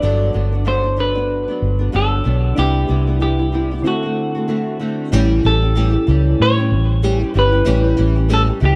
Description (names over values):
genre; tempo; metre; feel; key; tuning
indie pop, bedroom pop; 94 BPM; 4/4; swing 60% on 16ths; unclear; A4 = 440 Hz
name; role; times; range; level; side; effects
semi-hollow electric guitar; melody; 0.0-8.8 s; F#4 to D5; -23 LUFS; equal; lush chorus, tape echo
flamenco guitar; accompaniment; 0.0-8.8 s; G2 to G4; -23 LUFS; equal; analog chorus, vibrato effect
soft electric-piano-like synth keys; accompaniment; 0.0-5.1 s; D3 to D5; -28 LUFS; equal; chorus
vintage muted fingered electric bass; bass; 0.0-8.8 s; G1 to A2; -19 LUFS; equal; none
room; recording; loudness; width
digital ambience; none; -17 LUFS; mono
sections
0.0-5.1 A section; 5.1-8.8 B section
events
break 3.9-5.1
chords
0.0 Gmaj7; 2.6 Cmaj7; 3.9 D7; 5.1 A7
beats
| 0.03 0.67 1.31 1.94 | 2.58 3.22 3.85 4.49 | 5.13 5.76 6.40 7.03 | 7.67 8.30